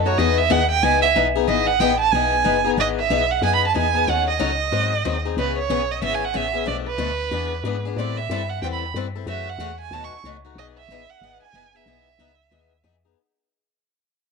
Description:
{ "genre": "acoustic string swing (jazz manouche)", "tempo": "185 BPM", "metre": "4/4", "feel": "swing 61% on 8ths", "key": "E major", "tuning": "A4 = 440 Hz", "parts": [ { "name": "warm violin", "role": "melody", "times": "0.0-12.8 s", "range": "B4 to C#6", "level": "-21 LUFS", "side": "right 8 dB", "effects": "none" }, { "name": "woody FM bass", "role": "bass", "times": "0.0-13.2 s", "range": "F#1 to A2", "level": "-26 LUFS", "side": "left 2 dB", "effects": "none" }, { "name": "picked swing-style acoustic guitar", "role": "accompaniment", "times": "0.1-13.2 s", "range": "B2 to A4", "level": "-24 LUFS", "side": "left 15 dB", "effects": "none" } ], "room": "moderate spring reverb, RT60 1.6 s, studio ambience", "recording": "1960s-style stereo with parts hard left and right", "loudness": "-18 LUFS", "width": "side -4 dB against mid", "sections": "0.0-2.8 A section; 2.8-13.2 B section", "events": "violin solo 0.0-2.8; fade-out 2.8-13.2", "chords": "0.2 Emaj7; 4.1 D#m7b5; 4.7 G#7; 5.4 C#m7; 6.7 Bm7b5; 7.3 E7; 8.0 Am7; 9.3 F#m7; 9.9 B7; 10.6 Emaj7" }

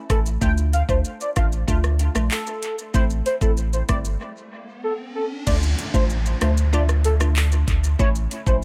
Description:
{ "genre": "dancehall", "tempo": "95 BPM", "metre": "4/4", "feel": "straight", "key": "D minor", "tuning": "A4 = 440 Hz", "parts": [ { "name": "glassy wavetable pluck", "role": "accompaniment", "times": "0.0-8.6 s", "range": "A3 to F4", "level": "-31 LUFS", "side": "equal", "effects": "chorus, dub echo" }, { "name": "warm velvety synth lead", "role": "melody", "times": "0.1-8.6 s", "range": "A4 to G5", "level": "-29 LUFS", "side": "equal", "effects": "chorus, dub echo" }, { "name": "warm sub bass", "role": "bass", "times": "0.1-8.6 s", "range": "G1 to D2", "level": "-23 LUFS", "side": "equal", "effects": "none" }, { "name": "island pop drum kit", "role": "drums", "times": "0.1-8.6 s", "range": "crash cymbal, handclaps, hi-hat, kick drum, rim click, shaker", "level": "-26 LUFS", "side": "equal", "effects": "dub echo" }, { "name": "riser and downlifter", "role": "sound effects", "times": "4.1-8.6 s", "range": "none", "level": "-37 LUFS", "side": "equal", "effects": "none" } ], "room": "little or no reverb", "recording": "echo-heavy mix", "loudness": "-21 LUFS", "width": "mono", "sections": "0.0-5.5 A section; 5.5-8.6 B section", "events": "riser 4.1-5.5; break 4.2-5.5", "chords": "0.4 Dm; 2.9 Am; 5.5 Dm; 8.0 A" }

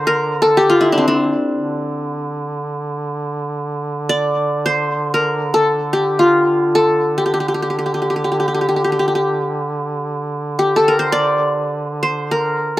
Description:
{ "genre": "Turkish makam ensemble", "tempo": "free time", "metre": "none", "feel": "none", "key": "D makam ussak", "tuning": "A4 = 440 Hz", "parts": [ { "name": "qanun", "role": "melody", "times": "0.0-12.8 s", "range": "C4 to D5", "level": "-15 LUFS", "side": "left 1 dB", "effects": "none" }, { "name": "warm duduk", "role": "drone", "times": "0.0-12.8 s", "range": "D3", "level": "-22 LUFS", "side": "right 2 dB", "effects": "none" } ], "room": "light reverb", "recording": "recorded outdoors, with no room sound", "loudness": "-15 LUFS", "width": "side -16 dB against mid", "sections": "0.0-12.8 A section", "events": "none", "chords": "none" }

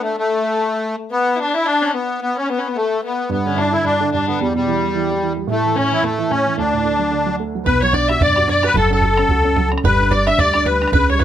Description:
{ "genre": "celtic folk, Celtic reel", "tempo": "220 BPM", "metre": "4/4", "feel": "swing 57% on 8ths", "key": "unclear", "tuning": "A4 = 440 Hz", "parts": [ { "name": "musette accordion", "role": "melody", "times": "0.0-11.2 s", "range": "G3 to E5", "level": "-18 LUFS", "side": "left 1 dB", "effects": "plate reverb" }, { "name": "dark fiddle", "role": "second line", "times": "0.0-11.2 s", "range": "G3 to E5", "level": "-23 LUFS", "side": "left 4 dB", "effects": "none" }, { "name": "dark concert grand piano", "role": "accompaniment", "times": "3.3-11.2 s", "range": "D2 to F#4", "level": "-21 LUFS", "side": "right 5 dB", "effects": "none" }, { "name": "bluegrass banjo", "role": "second line", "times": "7.7-11.2 s", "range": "A4 to E5", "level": "-26 LUFS", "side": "right 6 dB", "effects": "none" }, { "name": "upright bass", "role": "bass", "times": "7.7-11.2 s", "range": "F#1 to F#2", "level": "-20 LUFS", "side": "equal", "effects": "none" }, { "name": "bodhran", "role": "percussion", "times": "7.7-11.2 s", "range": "none", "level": "-22 LUFS", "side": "right 2 dB", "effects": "none" } ], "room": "light reverb", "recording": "none", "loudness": "-15 LUFS", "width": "side -10 dB against mid", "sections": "0.0-7.7 A section; 7.7-11.2 A section", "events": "none", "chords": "0.0 N.C.; 3.3 G; 4.4 Em; 5.5 A; 6.6 D; 7.7 Bm; 8.8 F#m; 9.8 G" }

